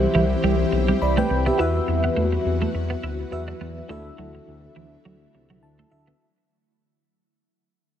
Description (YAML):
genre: pop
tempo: 104 BPM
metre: 4/4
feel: swing 55% on 16ths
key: unclear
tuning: A4 = 440 Hz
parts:
  - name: FM electric piano with tremolo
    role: accompaniment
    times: 0.0-6.2 s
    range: D4 to B5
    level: -26 LUFS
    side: equal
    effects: phaser
  - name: ethereal airy pad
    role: sustained chords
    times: 0.0-6.2 s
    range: D3 to G4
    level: -28 LUFS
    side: left 2 dB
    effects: ensemble chorus, built-in reverb
  - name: funky polysynth comp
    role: stabs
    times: 0.0-6.2 s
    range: E4 to C5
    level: -34 LUFS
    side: right 1 dB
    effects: chorus
  - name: smooth gliding synth bass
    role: bass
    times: 0.0-6.1 s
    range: B1 to E2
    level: -24 LUFS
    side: equal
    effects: none
  - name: twelve-string electric guitar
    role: riff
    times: 0.1-6.2 s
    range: E3 to E4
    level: -27 LUFS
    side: right 4 dB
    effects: analog chorus
room: light reverb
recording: none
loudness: -20 LUFS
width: side -10 dB against mid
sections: 0.0-6.2 A section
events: fade-out 0.0-6.2; FM electric piano fill 5.3-6.2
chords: 0.0 C; 1.6 Esus2; 3.9 Dadd9